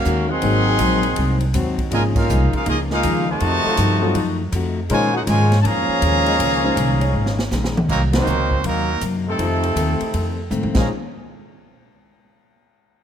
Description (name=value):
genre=jazz, big band swing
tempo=161 BPM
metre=4/4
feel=swing 65% on 8ths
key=Bb minor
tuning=A4 = 440 Hz
part: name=clear trumpet section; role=melody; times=0.0-10.9 s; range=Gb3 to C6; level=-22 LUFS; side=equal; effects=none
part: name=clear trombone section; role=second line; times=0.0-10.9 s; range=Bb2 to Gb4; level=-25 LUFS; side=right 3 dB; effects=none
part: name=upright bass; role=bass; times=0.0-10.9 s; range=Ab1 to Bb2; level=-21 LUFS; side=equal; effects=none
part: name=swinging big-band drum kit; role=drums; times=0.0-10.8 s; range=crash cymbal, hi-hat, kick drum, ride cymbal, snare drum, toms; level=-27 LUFS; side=equal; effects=none
part: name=picked plugged-in steel-string acoustic guitar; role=accompaniment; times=0.1-10.9 s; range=F2 to Gb4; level=-26 LUFS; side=left 6 dB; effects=none
part: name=warm baby grand piano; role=accompaniment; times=0.4-10.9 s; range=F3 to C5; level=-26 LUFS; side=left 3 dB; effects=none
part: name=clear trombone section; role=sustained chords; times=0.7-7.5 s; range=F3 to Db5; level=-30 LUFS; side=left 2 dB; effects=none
room=light reverb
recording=close, detailed microphones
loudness=-16 LUFS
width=side -8 dB against mid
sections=0.0-7.9 A section; 7.9-10.9 B section; 10.9-12.4 C section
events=band accent 2.1, 8.1; drum fill 7.1-7.9, 10.5-10.9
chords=0.4 Ab7; 1.9 Db69; 3.4 F7b9; 4.9 Bbm11; 7.9 Cm7b5; 9.4 F7; 10.7 Bbm11; 10.9 N.C.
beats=0.05 | 0.42 0.80 1.17 1.54 | 1.92 2.29 2.66 3.04 | 3.41 3.78 4.16 4.53 | 4.90 5.28 5.65 6.02 | 6.40 6.77 7.14 7.52 | 7.89 8.27 8.64 9.01 | 9.39 9.76 10.13 10.51 | 10.88